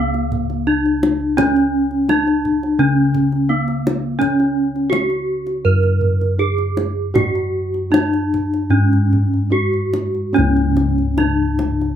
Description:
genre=Javanese gamelan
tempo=72-85 BPM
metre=4/4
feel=straight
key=C# pelog barang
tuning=A4 = 441 Hz
part: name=gamelan-type bronze metallophone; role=melody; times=0.0-12.0 s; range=A#3+20c to A#4+20c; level=-17 LUFS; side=right 1 dB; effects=none
part: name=gamelan-type bossed gongs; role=bass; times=0.0-12.0 s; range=C#2 to G#4-40c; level=-20 LUFS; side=left 2 dB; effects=none
part: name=kendang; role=percussion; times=0.1-11.9 s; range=none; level=-23 LUFS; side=equal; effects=none
room=moderate studio ambience, RT60 0.5 s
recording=band playing live in one room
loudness=-15 LUFS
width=side -9 dB against mid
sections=0.0-10.3 A section; 10.3-12.0 B section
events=none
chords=none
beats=0.68 | 1.38 2.09 2.80 3.50 | 4.21 4.92 5.65 6.39 | 7.15 7.92 8.71 9.51 | 10.34 11.17

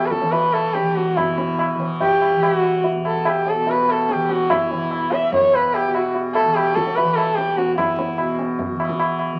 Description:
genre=indian classical, Hindustani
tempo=145 BPM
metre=4/4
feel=straight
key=E raga kafi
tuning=A4 = 441 Hz
part: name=rich sarangi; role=melody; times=0.0-8.3 s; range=E4 to E5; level=-21 LUFS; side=equal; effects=none
part: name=tanpura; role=drone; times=0.0-9.4 s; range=E2 to E3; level=-27 LUFS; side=equal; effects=none
part: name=tabla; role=percussion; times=0.1-9.3 s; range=none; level=-26 LUFS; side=equal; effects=none
room=moderate studio reverb, RT60 0.7 s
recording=very old 78 rpm record, vinyl crackle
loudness=-20 LUFS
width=mono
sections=0.0-1.2 A section; 1.2-9.4 B section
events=speeding up 0.0-9.4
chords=none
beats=0.33 0.75 | 1.17 1.59 2.01 2.43 | 2.85 3.26 3.68 4.09 | 4.51 4.92 5.33 5.75 | 6.16 6.57 6.97 7.38 | 7.79 8.20 8.60 9.00

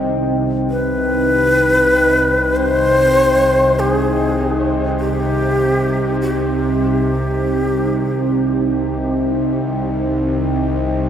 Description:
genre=dark ambient drone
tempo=free time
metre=none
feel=none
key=unclear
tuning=A4 = 442 Hz
part: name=deep dark ambient pad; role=sustained chords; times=0.0-11.1 s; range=C4 to G5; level=-20 LUFS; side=right 1 dB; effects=chorus, built-in reverb
part: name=bowed-like drone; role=drone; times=0.0-11.1 s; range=C2 to C3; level=-20 LUFS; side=equal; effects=built-in reverb
part: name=breathy mellow shakuhachi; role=melody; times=0.7-9.2 s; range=G4 to C5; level=-16 LUFS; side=left 1 dB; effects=dub echo
room=wet spring reverb, RT60 2.3 s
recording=echo-heavy mix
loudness=-14 LUFS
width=side -9 dB against mid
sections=0.1-11.1 A section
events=none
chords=0.1 Cm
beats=free time

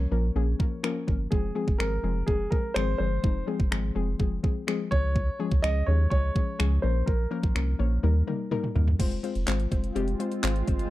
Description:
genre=dance-pop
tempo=125 BPM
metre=4/4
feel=straight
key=F minor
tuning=A4 = 440 Hz
part: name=warm grand piano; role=melody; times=0.0-8.7 s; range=Ab4 to Eb5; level=-32 LUFS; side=equal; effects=tape echo
part: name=round analog bass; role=bass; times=0.0-10.9 s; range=F1 to Eb2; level=-26 LUFS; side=equal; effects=sidechain pumping
part: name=soft round pluck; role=accompaniment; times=0.1-10.8 s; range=F3 to Db5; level=-31 LUFS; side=left 5 dB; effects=chorus, sidechain pumping
part: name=pop drum kit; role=drums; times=0.6-10.9 s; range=crash cymbal, finger snaps, handclaps, hi-hat, kick drum, toms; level=-27 LUFS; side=equal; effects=overdrive
part: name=shimmering ambient pad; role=sustained chords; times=9.7-10.9 s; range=Ab3 to F4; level=-36 LUFS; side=right 2 dB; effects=chorus, built-in reverb, sidechain pumping
room=little or no reverb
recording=dry, close 1970s-style studio recording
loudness=-24 LUFS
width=side -16 dB against mid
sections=0.0-9.0 A section; 9.0-10.9 B section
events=drum fill 8.0-9.0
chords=0.0 Bbm; 1.3 Fm; 4.9 Db; 6.8 Bbm; 8.0 Eb; 9.0 Fm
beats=0.36 0.84 | 1.32 1.80 2.28 2.76 | 3.24 3.72 4.20 4.68 | 5.16 5.64 6.12 6.60 | 7.08 7.56 8.04 8.52 | 9.00 9.48 9.96 10.44

